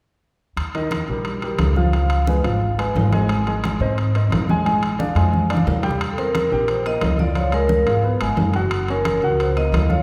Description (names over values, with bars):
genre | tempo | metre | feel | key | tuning
Afro-Cuban jazz | 177 BPM | 4/4 | straight | Eb major | A4 = 444 Hz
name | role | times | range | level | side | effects
upright bass | bass | 0.6-10.0 s | Gb1 to Ab2 | -24 LUFS | equal | none
congas | percussion | 0.6-10.0 s | none | -28 LUFS | equal | none
timbales | percussion | 0.6-9.9 s | none | -30 LUFS | equal | none
warm baby grand piano | accompaniment | 0.7-10.0 s | Eb3 to Ab5 | -26 LUFS | equal | none
vibraphone with medium hard mallets | melody | 6.1-10.0 s | Ab4 to Eb5 | -24 LUFS | equal | none
room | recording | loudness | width
wet recital hall reverb, RT60 1.5 s | recorded in a church or concert hall | -20 LUFS | mono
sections
0.6-6.0 A section; 6.0-10.0 B section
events
drum fill 5.3-6.0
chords
0.6 Eb; 1.9 Db7; 3.3 Ab; 4.7 Bb7; 6.0 Eb69; 7.4 Db7; 8.7 Gbmaj7